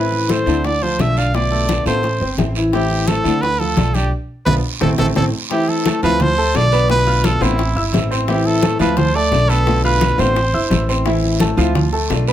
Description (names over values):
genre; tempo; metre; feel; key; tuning
latin, Cuban son and guajira; 173 BPM; 4/4; straight; A minor; A4 = 439 Hz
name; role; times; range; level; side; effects
clear trumpet; melody; 0.0-10.9 s; E4 to F5; -19 LUFS; right 2 dB; none
nylon-string guitar; accompaniment; 0.0-12.3 s; B2 to F4; -22 LUFS; left 6 dB; none
warm grand piano; arpeggios; 0.0-12.3 s; D3 to F6; -21 LUFS; right 2 dB; none
upright bass; bass; 0.0-12.3 s; G1 to D2; -20 LUFS; equal; none
bongos; percussion; 0.1-12.3 s; none; -26 LUFS; left 5 dB; none
congas; percussion; 0.1-12.3 s; none; -21 LUFS; equal; none
guiro; percussion; 0.3-12.3 s; none; -29 LUFS; right 7 dB; none
room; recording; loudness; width
light reverb; close, detailed microphones; -14 LUFS; side -11 dB against mid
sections
0.0-5.5 A section; 5.5-12.3 B section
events
band accent 4.1-5.5; drum fill 4.5-5.5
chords
0.0 Am; 0.6 Dm; 1.3 Bm7b5; 2.0 Am; 3.4 Bm7b5; 4.8 Am; 6.2 Dm; 6.9 Bm7b5; 7.6 Am; 9.0 Dm; 9.7 Bm7b5; 10.4 Am; 11.8 Dm